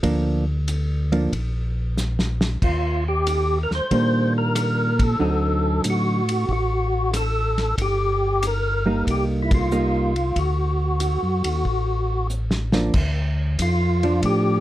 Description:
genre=soul jazz organ trio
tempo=93 BPM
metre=4/4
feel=swing 68% on 8ths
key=G minor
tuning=A4 = 440 Hz
part: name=hollow-body jazz guitar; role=accompaniment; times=0.0-14.6 s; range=D3 to Eb4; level=-23 LUFS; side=right 2 dB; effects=none
part: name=mellow tonewheel organ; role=bass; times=0.0-14.6 s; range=G1 to Bb2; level=-23 LUFS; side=equal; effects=overdrive, slow rotary speaker
part: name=warm soul drum kit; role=drums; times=0.0-14.4 s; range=crash cymbal, hi-hat, kick drum, ride cymbal, rim click, snare drum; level=-28 LUFS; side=equal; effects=none
part: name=percussive tonewheel organ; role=melody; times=2.6-14.6 s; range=E4 to C5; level=-24 LUFS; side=left 1 dB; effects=overdrive, chorus vibrato, slow rotary speaker
room=light reverb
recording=dark, warm production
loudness=-19 LUFS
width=side -14 dB against mid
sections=0.0-12.9 A section; 12.9-14.6 B section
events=drum fill 2.0-2.6, 12.3-12.9; band accent 4.9-5.2, 9.4-9.7; tonewheel organ solo 12.9-14.6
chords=0.0 Gm7 (rootless); 2.6 Ebmaj7; 5.2 D7b9; 7.8 Gm; 9.1 Cm7; 10.4 D; 12.9 G7(no3)

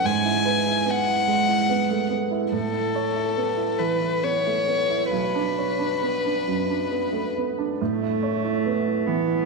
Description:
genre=neoclassical piano and strings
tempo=66-74 BPM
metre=3/4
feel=rubato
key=A major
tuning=A4 = 441 Hz
part: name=rich violin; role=melody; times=0.0-7.3 s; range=A4 to G#5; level=-24 LUFS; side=left 5 dB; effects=none
part: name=felt-muted upright piano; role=accompaniment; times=0.0-9.5 s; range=B1 to C#5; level=-24 LUFS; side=right 6 dB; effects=none
part: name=warm cello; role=second line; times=7.8-9.5 s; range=A3 to B3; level=-26 LUFS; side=right 4 dB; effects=none
room=wet echo chamber reverb, RT60 2.5 s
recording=1960s-style stereo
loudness=-21 LUFS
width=side -2 dB against mid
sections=0.0-7.8 A section; 7.8-9.5 A section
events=none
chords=0.1 Eadd9/G#; 2.5 Aadd9; 5.1 Bmadd9; 7.8 Aadd9

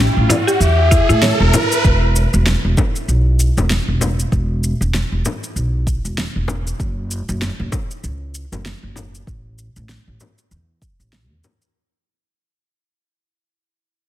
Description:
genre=organic downtempo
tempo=97 BPM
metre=4/4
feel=swing 58% on 16ths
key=unclear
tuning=A4 = 442 Hz
part: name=mallet-like synth pluck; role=arpeggios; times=0.0-1.7 s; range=C#4 to C#5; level=-21 LUFS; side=equal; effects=chorus, tape echo
part: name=upright bass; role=bass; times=0.0-11.4 s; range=E1 to A2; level=-17 LUFS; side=equal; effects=sidechain pumping
part: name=riser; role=sound effects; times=0.0-1.8 s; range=none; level=-20 LUFS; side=right 1 dB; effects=none
part: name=quartz singing bowl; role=texture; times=0.0-1.9 s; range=E4 to E5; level=-39 LUFS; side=right 4 dB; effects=none
part: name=mellow hollow bansuri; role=melody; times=0.3-1.5 s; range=D5 to F#5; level=-23 LUFS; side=left 3 dB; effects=tape echo
part: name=deep house drum kit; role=drums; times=0.3-11.7 s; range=hi-hat, shaker, snare drum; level=-23 LUFS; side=equal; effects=none
part: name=frame drum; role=percussion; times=0.3-11.6 s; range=none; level=-24 LUFS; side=left 3 dB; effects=none
part: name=electronic kick drum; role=drums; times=0.9-11.0 s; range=none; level=-18 LUFS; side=equal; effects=none
room=light reverb, small room ambience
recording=dense, heavily limited modern master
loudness=-15 LUFS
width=side -13 dB against mid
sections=0.0-1.8 A section; 1.8-11.7 B section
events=riser 0.0-1.8; fade-out 1.8-11.7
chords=0.0 A; 1.8 E5; 6.8 F#5; 9.3 A5

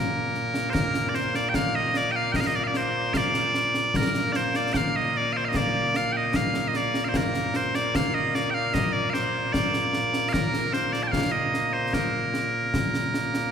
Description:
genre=scottish traditional, Scottish pipe music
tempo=75 BPM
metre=2/4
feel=straight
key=Bb major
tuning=A4 = 440 Hz
part: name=loud bright bagpipes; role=melody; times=0.0-13.5 s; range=Bb2 to A5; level=-24 LUFS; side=equal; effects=none
part: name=concert snare drum and concert bass drum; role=drums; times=0.3-13.5 s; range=none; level=-28 LUFS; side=equal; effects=none
room=wet church reverb, RT60 2.8 s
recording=recorded in a church or concert hall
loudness=-22 LUFS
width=side -7 dB against mid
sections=0.7-13.5 A section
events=none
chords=none

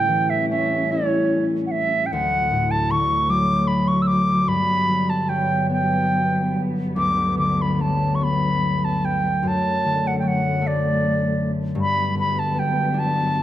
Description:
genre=celtic folk, Celtic slow air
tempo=48-53 BPM (dotted quarters)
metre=6/8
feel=rubato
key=unclear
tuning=A4 = 441 Hz
part: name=mellow wooden flute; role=melody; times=0.0-13.4 s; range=C#5 to E6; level=-22 LUFS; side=right 1 dB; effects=slapback echo
part: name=concert harp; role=accompaniment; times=0.0-13.4 s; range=D2 to E4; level=-22 LUFS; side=left 1 dB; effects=none
part: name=muted studio string section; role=sustained chords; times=0.0-13.4 s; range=D2 to C#4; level=-28 LUFS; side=equal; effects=none
room=light reverb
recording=close, detailed microphones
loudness=-18 LUFS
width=side -12 dB against mid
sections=0.0-13.4 A section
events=none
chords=0.0 A7; 2.1 D; 4.5 Gmaj7; 9.4 D/F#; 11.8 Gmaj7

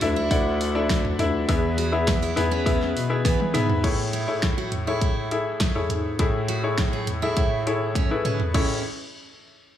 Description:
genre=piano-driven pop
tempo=102 BPM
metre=4/4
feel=straight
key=A major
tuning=A4 = 440 Hz
part: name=clear upright piano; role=accompaniment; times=0.0-8.8 s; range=A1 to F#5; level=-25 LUFS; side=left 3 dB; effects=none
part: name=mellow bass clarinet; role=bass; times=0.0-8.8 s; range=D2 to E3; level=-28 LUFS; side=equal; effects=none
part: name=pop drum kit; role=drums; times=0.0-8.7 s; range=crash cymbal, hi-hat, kick drum, snare drum, toms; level=-25 LUFS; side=equal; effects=none
part: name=picked steel-string acoustic guitar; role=riff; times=0.2-8.8 s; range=B3 to G#4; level=-32 LUFS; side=right 10 dB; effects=none
room=light reverb, small room ambience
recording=studio reverb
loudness=-21 LUFS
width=side -11 dB against mid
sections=0.0-3.8 A section; 3.8-8.5 B section; 8.5-9.8 C section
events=drum fill 3.3-3.8, 8.0-8.5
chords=0.0 Dsus2; 1.5 E; 3.8 Amaj7

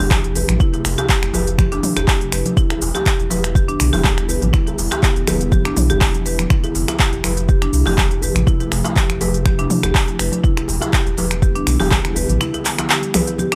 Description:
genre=afro house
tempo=122 BPM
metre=4/4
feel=swing 54% on 16ths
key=E phrygian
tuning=A4 = 440 Hz
part: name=ethereal airy pad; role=sustained chords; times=0.0-13.6 s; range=C3 to E4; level=-29 LUFS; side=equal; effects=ensemble chorus, built-in reverb, sidechain pumping
part: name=marimba with hard mallets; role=arpeggios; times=0.0-13.6 s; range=D4 to B4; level=-26 LUFS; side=equal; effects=sidechain pumping, dub echo
part: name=warm sub bass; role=bass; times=0.0-12.4 s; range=E1 to C2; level=-23 LUFS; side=equal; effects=sidechain pumping
part: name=deep house drum kit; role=drums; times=0.0-13.6 s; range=finger snaps, handclaps, hi-hat, shaker, toms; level=-24 LUFS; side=equal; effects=none
part: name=congas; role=percussion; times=0.0-13.6 s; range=none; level=-28 LUFS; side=equal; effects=none
part: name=electronic kick drum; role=drums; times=0.1-12.0 s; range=none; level=-19 LUFS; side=equal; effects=none
part: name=djembe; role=percussion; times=0.1-13.6 s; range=none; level=-29 LUFS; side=equal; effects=none
room=digital ambience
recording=none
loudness=-17 LUFS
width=mono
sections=0.0-13.6 A section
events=none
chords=0.0 Fmaj7; 2.6 Em7; 6.5 Fmaj7; 10.4 Em7

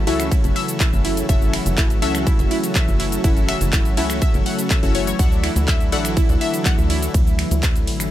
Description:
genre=progressive house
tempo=123 BPM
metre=4/4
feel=straight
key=F# minor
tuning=A4 = 441 Hz
part: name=warm analog pad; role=sustained chords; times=0.0-8.1 s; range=C#3 to F#4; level=-25 LUFS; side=equal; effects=chorus, sidechain pumping
part: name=supersaw stab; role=stabs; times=0.0-7.1 s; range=C#4 to E5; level=-26 LUFS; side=left 3 dB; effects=sidechain pumping, tape echo
part: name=tight sequencer bass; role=bass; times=0.0-8.1 s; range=F#1 to D2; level=-23 LUFS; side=equal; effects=sidechain pumping
part: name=analog pluck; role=arpeggios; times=0.1-7.0 s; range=E4 to F#5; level=-27 LUFS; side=equal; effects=chorus, sidechain pumping, tape echo
part: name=house drum kit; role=drums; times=0.1-8.1 s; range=finger snaps, handclaps, hi-hat, ride cymbal, shaker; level=-26 LUFS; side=equal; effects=none
part: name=electronic kick drum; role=drums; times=0.3-7.7 s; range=none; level=-18 LUFS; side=equal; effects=none
room=digital ambience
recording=none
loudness=-16 LUFS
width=side -13 dB against mid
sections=0.0-8.1 A section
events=none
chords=0.0 F#m7; 5.2 Dadd9

